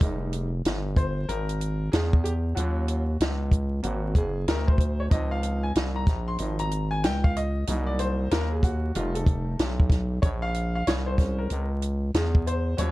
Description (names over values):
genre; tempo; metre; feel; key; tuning
hip hop, jazz-hop; 94 BPM; 4/4; swing 61% on 16ths; F minor; A4 = 440 Hz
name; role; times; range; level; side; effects
clear upright piano; accompaniment; 0.0-12.9 s; F3 to C6; -32 LUFS; left 1 dB; none
growling FM bass; bass; 0.0-12.9 s; F1 to E2; -27 LUFS; equal; none
compact cocktail drum kit; drums; 0.0-12.9 s; hi-hat, kick drum, snare drum; -24 LUFS; equal; none
room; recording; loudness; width
studio reverb; dark, warm production, vinyl crackle; -23 LUFS; side -18 dB against mid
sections
0.0-12.9 A section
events
upright piano solo 0.0-12.9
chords
0.0 Fm9; 2.6 Ebm7; 3.8 Ab7; 5.1 Dbmaj7; 7.7 Cm7b5; 8.9 F7; 10.2 Bbm7